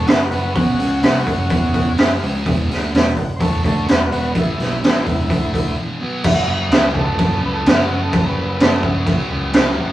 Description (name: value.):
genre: garage rock duo or trio.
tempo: 127 BPM.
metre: 4/4.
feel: straight.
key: F# minor.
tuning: A4 = 440 Hz.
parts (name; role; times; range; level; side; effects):
overdriven combo organ; melody; 0.0-8.8 s; C#4 to C#5; -24 LUFS; equal; none.
thick fuzz guitar; riff; 0.0-9.9 s; E2 to E4; -22 LUFS; equal; distortion.
growling picked electric bass; bass; 0.0-9.9 s; E1 to E2; -23 LUFS; right 1 dB; overdrive.
raw garage drum kit; drums; 0.1-9.6 s; crash cymbal, hi-hat, kick drum, snare drum; -16 LUFS; right 1 dB; none.
room: moderate studio reverb, RT60 0.6 s.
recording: rough rehearsal-room recording, small room ambience.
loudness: -15 LUFS.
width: side -14 dB against mid.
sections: 0.0-6.2 A section; 6.2-9.9 B section.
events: break 5.8-6.2.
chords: 0.0 F#5; 1.5 E5; 2.0 F#5; 2.4 E5; 5.3 D5; 5.8 E5; 6.2 F#m.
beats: 0.07 | 0.55 1.02 1.50 1.97 | 2.45 2.92 3.40 3.87 | 4.34 4.82 5.29 5.76 | 6.24 6.71 7.18 7.65 | 8.12 8.59 9.06 9.53.